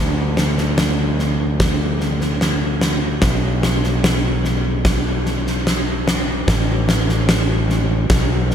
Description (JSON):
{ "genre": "post-rock", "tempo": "74 BPM", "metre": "4/4", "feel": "straight", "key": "unclear", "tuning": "A4 = 440 Hz", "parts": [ { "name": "growling fingered electric bass", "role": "bass", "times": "0.0-8.5 s", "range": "A1 to D2", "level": "-19 LUFS", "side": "equal", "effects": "overdrive" }, { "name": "huge arena drum kit", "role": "drums", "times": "0.4-8.5 s", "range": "kick drum, snare drum", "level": "-18 LUFS", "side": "equal", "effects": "none" } ], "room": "moderate lush hall reverb, RT60 2.8 s", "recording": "dreamy mix soaked in reverb", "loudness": "-16 LUFS", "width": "side -8 dB against mid", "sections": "0.0-8.5 A section", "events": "none", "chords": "none" }